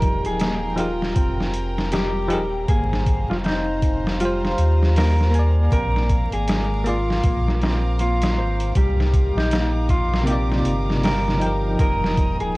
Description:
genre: trip hop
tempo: 79 BPM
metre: 4/4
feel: swing 60% on 16ths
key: C minor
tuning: A4 = 442 Hz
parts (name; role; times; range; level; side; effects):
- mellow electric guitar; melody; 0.0-12.6 s; Eb4 to Bb4; -26 LUFS; equal; tape echo
- bell-like tine electric piano; accompaniment; 0.0-12.6 s; C3 to Ab5; -26 LUFS; equal; tremolo
- clear studio violin section; sustained chords; 0.0-12.6 s; Eb4 to Eb6; -32 LUFS; right 1 dB; none
- concert harp; arpeggios; 0.0-12.6 s; G3 to C5; -31 LUFS; left 1 dB; tape echo
- warm sub bass; bass; 0.0-12.6 s; Eb1 to Eb2; -22 LUFS; equal; none
- trip hop sampler-style drum kit; drums; 0.0-12.5 s; hi-hat, kick drum, snare drum; -22 LUFS; equal; none
room: digital ambience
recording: worn, warbling old tape, cassette tape, vinyl crackle, warbly pitch drift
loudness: -18 LUFS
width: side -22 dB against mid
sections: 0.0-12.6 A section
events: none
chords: 0.0 Fm11; 2.7 Ab6; 5.7 Bb7; 8.8 Cm11; 11.8 Fm11

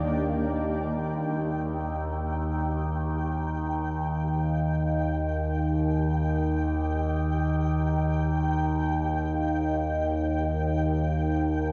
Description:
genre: ambient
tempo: free time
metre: none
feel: none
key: Eb major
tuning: A4 = 438 Hz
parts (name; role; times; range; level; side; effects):
- overtone-sweeping drone; drone; 0.0-11.7 s; Eb2 to Eb3; -28 LUFS; equal; chorus, built-in reverb
- flickering grainy texture; texture; 0.0-11.7 s; G5; -38 LUFS; equal; built-in reverb
room: wet cathedral reverb, RT60 5.8 s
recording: in a vast, echoing space, cassette tape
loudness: -27 LUFS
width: mono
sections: 0.3-11.7 A section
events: none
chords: 0.3 Eb

